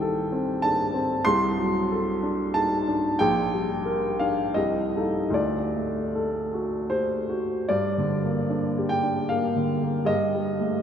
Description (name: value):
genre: classical, romantic nocturne for solo piano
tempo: 73-96 BPM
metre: 3/4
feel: rubato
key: G minor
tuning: A4 = 440 Hz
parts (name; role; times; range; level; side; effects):
- clear upright piano; solo; 0.0-10.8 s; Bb1 to C6; -23 LUFS; equal; none
room: wet cathedral reverb, RT60 5.6 s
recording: in a vast, echoing space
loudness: -23 LUFS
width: side -8 dB against mid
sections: 0.0-7.7 A section; 7.7-10.8 B section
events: none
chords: 0.0 Am7b5/C; 1.2 D7/C; 3.2 Gm/Bb; 4.6 Adim/C; 5.3 D; 7.7 Gm; 10.1 A7(b5, no3)/G